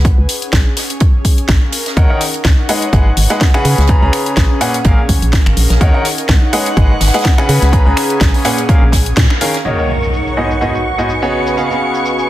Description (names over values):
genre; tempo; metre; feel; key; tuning
piano house; 125 BPM; 4/4; swing 55% on 16ths; Eb minor; A4 = 440 Hz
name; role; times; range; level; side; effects
organ-like FM bass; bass; 0.0-9.3 s; Ab1 to Db3; -13 LUFS; equal; sidechain pumping
electronic kick drum; drums; 0.0-9.3 s; none; -11 LUFS; equal; overdrive, studio reverb
house drum kit; drums; 0.0-12.3 s; crash cymbal, finger snaps, hi-hat, shaker, snare drum; -19 LUFS; left 2 dB; overdrive, low-pass filter on hats, studio reverb, low-pass filter on snare, low-pass filter on cymbals, low-pass filter on perc
airy breathy pad; texture; 0.0-12.3 s; Db4 to Ab5; -21 LUFS; equal; chorus, sidechain pumping
compact cocktail drum kit; drums; 0.1-9.6 s; hi-hat, snare drum; -26 LUFS; right 3 dB; sidechain pumping on hats, high-pass filter on hats, studio reverb, soft clipping on snare, high-pass filter on snare, high-pass filter on room
bright concert grand piano; riff; 2.0-12.3 s; Ab2 to Bb5; -17 LUFS; equal; sidechain pumping, low-pass filter, dub echo
impact; sound effects; 9.6-11.6 s; none; -22 LUFS; equal; none
string machine, violins; sustained chords; 9.7-12.3 s; Db6; -21 LUFS; equal; ensemble chorus, sidechain pumping
room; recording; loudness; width
light reverb, studio reverb; dense, heavily limited modern master; -10 LUFS; side -14 dB against mid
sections
0.0-9.6 A section; 9.6-12.3 B section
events
band accent 9.2; impact 9.6-11.6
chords
0.0 Db7sus4; 1.0 Bbm7; 2.0 Ebm7; 2.7 Abm7; 3.6 Db7sus4; 4.8 Bbm7; 5.8 Ebm7; 6.5 Abm7; 7.5 Db7sus4; 8.7 Bbm7; 9.6 Ebm7; 10.4 Abm7; 11.3 Db7sus4